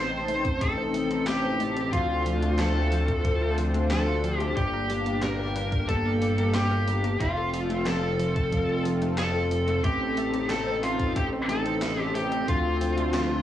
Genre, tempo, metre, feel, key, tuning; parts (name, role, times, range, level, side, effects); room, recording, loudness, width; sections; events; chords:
synthwave; 91 BPM; 4/4; straight; A4 = 441 Hz
high-gain lead guitar; melody; 0.0-13.4 s; F4 to C5; -28 LUFS; left 1 dB; distortion, cassette tape, analog delay
chorused pulse-width pad; sustained chords; 0.0-13.4 s; A3 to A5; -30 LUFS; equal; sidechain pumping, cassette tape
analog pluck; arpeggios; 0.0-13.4 s; F3 to C5; -36 LUFS; left 2 dB; chorus, cassette tape, analog delay
fat analog bass; bass; 0.0-13.4 s; F1 to D2; -28 LUFS; equal
gated 80s digital drum machine; drums; 0.3-13.3 s; handclaps, hi-hat, snare drum; -35 LUFS; equal; gated reverb, gated reverb snare, small room reverb
electronic kick drum; drums; 0.4-12.6 s; -28 LUFS; equal; small room reverb
moderate studio reverb, RT60 0.6 s; home recording on cassette, small room ambience; -23 LUFS; side -11 dB against mid
0.0-13.4 A section
0.0 Adim; 1.9 Dm7; 4.6 Gm; 7.2 F; 9.8 Adim; 12.5 Dm7